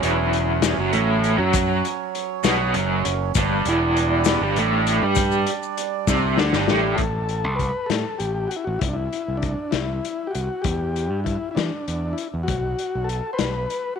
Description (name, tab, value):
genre	psychedelic rock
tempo	66 BPM (dotted quarters)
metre	6/8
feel	straight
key	unclear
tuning	A4 = 442 Hz
part	hand-pumped harmonium	sustained chords	0.0-7.0 s	F#3 to D5	-27 LUFS	right 14 dB	none
part	raw garage guitar	riff	0.0-7.0 s	E2 to G4	-21 LUFS	equal	overdrive, tremolo
part	growling fingered electric bass	bass	0.0-13.7 s	E1 to E3	-25 LUFS	right 1 dB	overdrive
part	vintage drum kit	drums	0.0-13.8 s	hi-hat, kick drum, snare drum	-25 LUFS	left 6 dB	none
part	maracas	percussion	0.6-6.6 s	none	-34 LUFS	left 16 dB	none
part	combo organ	melody	6.7-14.0 s	D4 to C5	-27 LUFS	left 3 dB	slapback echo
room	light reverb, small room ambience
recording	1960s-style stereo with parts hard left and right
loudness	-20 LUFS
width	side -6 dB against mid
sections	0.0-7.0 A section; 7.0-14.0 B section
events	drum fill 6.1-7.0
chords	0.0 F#5; 3.4 G5; 7.0 Am; 8.8 Cadd9; 10.7 Em; 12.5 B5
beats	0.63 | 1.54 2.45 | 3.35 4.26 | 5.17 6.08 | 7.00 7.91 | 8.82 9.74 | 10.65 11.57 | 12.48 13.40